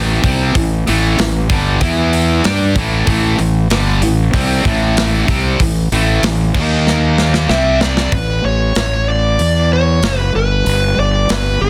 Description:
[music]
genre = hard rock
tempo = 95 BPM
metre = 4/4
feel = straight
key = unclear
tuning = A4 = 439 Hz
[part]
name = distorted electric guitar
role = riff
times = 0.0-8.1 s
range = G2 to G4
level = -18 LUFS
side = equal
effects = overdrive
[part]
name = fuzz fingered electric bass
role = bass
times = 0.0-11.7 s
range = F#1 to G2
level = -18 LUFS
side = equal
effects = overdrive
[part]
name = tight metal drum kit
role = drums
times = 0.2-11.4 s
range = crash cymbal, hi-hat, kick drum, snare drum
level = -21 LUFS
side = equal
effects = none
[part]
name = dark smooth lead guitar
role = melody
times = 7.5-11.7 s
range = A4 to E5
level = -19 LUFS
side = equal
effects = overdrive
[sound]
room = light reverb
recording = dense, heavily limited modern master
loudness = -14 LUFS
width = mono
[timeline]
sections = 0.0-8.1 A section; 8.1-11.7 B section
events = drum fill 6.9-8.1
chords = 0.0 A5; 1.8 E5; 2.4 A5; 6.5 D#5; 7.5 C5; 8.1 A; 10.3 G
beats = | 0.55 1.18 1.81 2.44 | 3.07 3.70 4.33 4.96 | 5.60 6.23 6.86 7.49 | 8.13 8.76 9.39 10.03 | 10.66 11.30

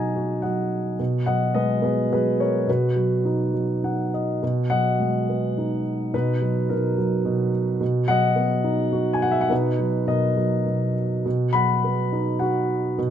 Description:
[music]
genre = classical, lyrical solo piano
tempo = 105 BPM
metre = 3/4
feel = rubato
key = B major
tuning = A4 = 440 Hz
[part]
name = dark baby grand piano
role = solo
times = 0.0-13.1 s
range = B2 to B5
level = -20 LUFS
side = equal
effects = none
[sound]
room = light reverb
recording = close, detailed microphones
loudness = -20 LUFS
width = side -9 dB against mid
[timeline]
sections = 0.0-4.4 A section; 4.4-13.1 B section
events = grand piano fill 3.5-4.4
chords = 0.0 B; 1.0 G#m7/B; 2.7 B; 4.4 G#m7/B; 6.1 Bmaj7; 11.3 B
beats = 0.43 | 0.99 1.55 2.10 | 2.67 3.25 3.83 | 4.42 5.00 5.57 | 6.13 6.70 7.25 | 7.81 8.38 8.94 | 9.51 10.09 10.67 | 11.25 11.83 12.40 | 12.98

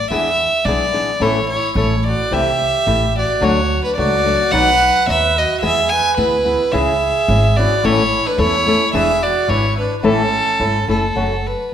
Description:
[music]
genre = mexican folk, mariachi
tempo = 108 BPM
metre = 2/4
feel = straight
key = A major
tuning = A4 = 441 Hz
[part]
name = rich violin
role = melody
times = 0.0-11.7 s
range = A4 to G#5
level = -16 LUFS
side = right 1 dB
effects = none
[part]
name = flamenco guitar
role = accompaniment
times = 0.1-11.3 s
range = F#2 to B4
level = -20 LUFS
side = left 3 dB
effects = none
[part]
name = upright bass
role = bass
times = 0.1-11.5 s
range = E1 to E2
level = -21 LUFS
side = equal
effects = none
[part]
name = mellow trumpet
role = second line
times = 1.2-10.9 s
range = C#4 to B4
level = -24 LUFS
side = right 5 dB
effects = none
[sound]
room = wet recital hall reverb, RT60 1.4 s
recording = minimal, uncompressed stereo recording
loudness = -14 LUFS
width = side -9 dB against mid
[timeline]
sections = 0.0-11.2 A section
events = none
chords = 0.1 E7; 1.2 A; 2.3 C6; 3.4 D; 4.5 B; 5.6 E; 6.7 C#m; 7.8 A; 8.9 E7; 10.0 A; 11.2 F#m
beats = | 0.11 0.66 | 1.22 1.77 | 2.33 2.89 | 3.44 3.98 | 4.53 5.08 | 5.63 6.18 | 6.75 7.30 | 7.84 8.39 | 8.94 9.49 | 10.04 10.60 | 11.17 11.74

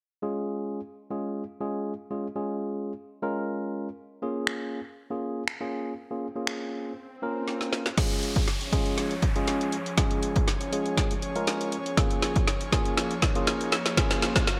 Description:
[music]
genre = dance-pop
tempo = 120 BPM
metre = 4/4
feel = straight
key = unclear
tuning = A4 = 440 Hz
[part]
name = tine electric piano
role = accompaniment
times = 0.2-14.5 s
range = Ab3 to Bb4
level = -33 LUFS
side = equal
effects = sidechain pumping
[part]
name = swell, riser and downlifter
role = sound effects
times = 6.8-14.6 s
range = none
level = -41 LUFS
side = equal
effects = none
[part]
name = deep house drum kit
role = drums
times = 4.5-14.6 s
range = crash cymbal, finger snaps, hi-hat, kick drum, snare drum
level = -28 LUFS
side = equal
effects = gated reverb
[part]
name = airy breathy pad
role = sustained chords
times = 8.3-14.6 s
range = F3 to Db5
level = -36 LUFS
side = equal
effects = chorus, sidechain pumping
[sound]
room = light reverb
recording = bright 1980s-style digital production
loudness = -28 LUFS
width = mono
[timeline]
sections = 0.0-8.0 A section; 8.0-14.6 B section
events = drum fill 7.5-8.0, 8.0-14.6; build-up 8.0-14.6; riser 8.0-14.6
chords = 0.0 Db; 4.0 Bbm7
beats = 0.48 0.98 1.48 | 1.98 2.48 2.98 3.48 | 3.98 4.48 4.98 5.48 | 5.98 6.48 6.98 7.48 | 7.98 8.48 8.98 9.48 | 9.98 10.48 10.98 11.48 | 11.98 12.48 12.98 13.48 | 13.98 14.48

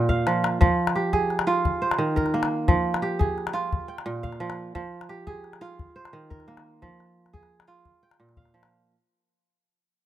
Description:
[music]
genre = west african traditional, West African string and xylophone music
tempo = 116 BPM (dotted quarters)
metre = 12/8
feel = straight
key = F minor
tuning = A4 = 440 Hz
[part]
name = kora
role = arpeggios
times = 0.0-9.4 s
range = Bb2 to G5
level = -24 LUFS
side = right 2 dB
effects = none
[part]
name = calabash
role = percussion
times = 0.1-8.7 s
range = none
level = -25 LUFS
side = left 3 dB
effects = none
[sound]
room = studio reverb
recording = rough home demo mix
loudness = -22 LUFS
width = side -12 dB against mid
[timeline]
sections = 0.0-8.9 A section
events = fade-out 0.0-8.9; drum fill 0.0-0.6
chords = 0.0 Bb5; 0.6 Fm; 1.6 Eb5; 2.7 Fm; 3.7 Bb5; 4.8 Fm; 5.8 Eb5; 6.8 Fm; 7.9 Bb5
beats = 0.09 | 0.61 1.13 1.64 2.16 | 2.68 3.20 3.71 4.23 | 4.75 5.27 5.78 6.30 | 6.82 7.34 7.85 8.37

